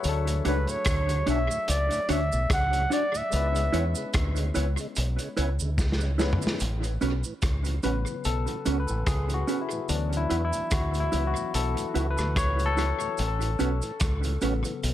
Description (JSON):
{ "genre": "lovers rock reggae", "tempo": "73 BPM", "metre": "4/4", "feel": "swing 56% on 16ths", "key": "A major", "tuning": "A4 = 441 Hz", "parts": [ { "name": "barky tine electric piano", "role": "accompaniment", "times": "0.0-14.9 s", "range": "C#3 to C#5", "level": "-32 LUFS", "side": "left 4 dB", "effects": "auto-pan, tape echo" }, { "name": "crunchy breakbeat drum kit", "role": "drums", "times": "0.0-14.9 s", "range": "hi-hat, kick drum, rim click, snare drum, toms", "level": "-30 LUFS", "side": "equal", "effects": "gated reverb, tape echo" }, { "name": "cabasa", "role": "percussion", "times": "0.0-14.9 s", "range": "none", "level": "-40 LUFS", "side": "right 8 dB", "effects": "none" }, { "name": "deep dub fingered electric bass", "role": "bass", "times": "0.1-14.9 s", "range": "A1 to E2", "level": "-27 LUFS", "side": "equal", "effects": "none" }, { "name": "tonewheel organ", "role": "accompaniment", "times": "0.3-14.7 s", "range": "D2 to F#4", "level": "-39 LUFS", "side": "right 2 dB", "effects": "overdrive, chorus vibrato, slow rotary speaker, tape echo" }, { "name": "mellow electric guitar", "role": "stabs", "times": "0.4-14.5 s", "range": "C#4 to C#5", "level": "-33 LUFS", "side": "right 2 dB", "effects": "tape echo" }, { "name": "warm flugelhorn", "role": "melody", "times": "0.5-4.0 s", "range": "B4 to F#5", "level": "-28 LUFS", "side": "right 1 dB", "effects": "tape echo" } ], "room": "light reverb, small room reverb", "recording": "none", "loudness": "-24 LUFS", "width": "side -12 dB against mid", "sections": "0.0-6.6 A section; 6.6-14.9 B section", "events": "drum fill 5.8-6.6; tine electric piano solo 6.6-14.9", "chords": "0.0 Dmaj7; 3.3 C#m7; 6.6 A69; 9.9 D69; 13.2 A69", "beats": "| 0.04 0.86 1.68 2.50 | 3.32 4.14 4.96 5.78 | 6.61 7.43 8.25 9.07 | 9.89 10.72 11.54 12.36 | 13.19 14.01 14.83" }